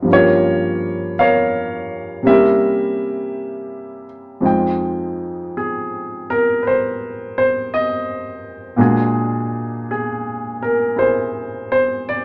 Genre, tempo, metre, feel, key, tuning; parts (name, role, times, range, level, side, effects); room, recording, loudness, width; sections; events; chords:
jazz ballad; 55 BPM; 4/4; swing 67% on 8ths; F minor; A4 = 442 Hz
warm baby grand piano; solo; 0.0-12.2 s; F2 to G5; -19 LUFS; equal
wet studio reverb, RT60 0.5 s; -19 LUFS; mono
0.0-4.4 A section; 4.4-12.2 B section
0.1 Gm7b5; 2.2 C7b9; 4.4 Fm9; 8.8 Bbaug7